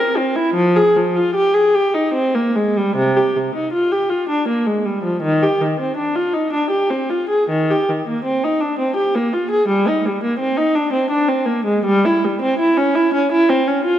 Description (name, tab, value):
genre	classical, baroque-style suite movement for unaccompanied viola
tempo	72-85 BPM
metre	3/4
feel	rubato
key	C minor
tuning	A4 = 442 Hz
part	warm viola	solo	0.0-14.0 s	C3 to Bb4	-15 LUFS	equal	none
room	moderate scoring stage reverb, RT60 1.6 s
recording	dark, warm production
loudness	-15 LUFS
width	side -11 dB against mid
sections	0.0-3.0 A section; 3.0-14.0 A section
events	none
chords	none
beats	| 0.54 1.34 2.14 | 2.96 3.73 4.48 | 5.23 5.97 6.72 | 7.48 8.23 8.96 | 9.68 10.39 11.10 | 11.85 12.59 13.31